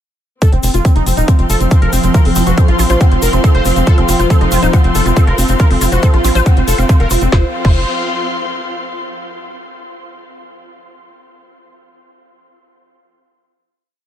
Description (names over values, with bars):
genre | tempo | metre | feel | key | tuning
psychedelic trance | 139 BPM | 4/4 | straight | unclear | A4 = 438 Hz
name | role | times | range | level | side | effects
wide unison lead | melody | 0.4-7.8 s | C4 to C5 | -20 LUFS | equal | phaser, sidechain pumping, analog delay
pulsing gated texture | sustained chords | 0.7-7.4 s | F3 | -21 LUFS | right 1 dB | chorus, built-in reverb, sidechain pumping
drum and bass drum kit | drums | 0.4-7.7 s | crash cymbal, hi-hat, snare drum | -25 LUFS | left 2 dB | none
electronic kick drum | drums | 0.4-7.7 s | none | -10 LUFS | equal | none
tube shaker | percussion | 0.4-7.3 s | none | -25 LUFS | left 6 dB | none
dark studio string section | texture | 0.4-9.0 s | C4 to C6 | -23 LUFS | left 1 dB | sidechain pumping
tight sequencer bass | bass | 0.5-7.8 s | Eb1 to Bb1 | -14 LUFS | equal | none
woody wave-folded pluck | riff | 2.1-7.8 s | F4 to Gb5 | -21 LUFS | equal | chorus, auto-pan, cassette tape, sidechain pumping, ping-pong delay
room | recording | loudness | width
light reverb | none | -10 LUFS | side -10 dB against mid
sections
0.4-7.3 groove; 7.3-9.1 final chord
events
none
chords
0.4 F5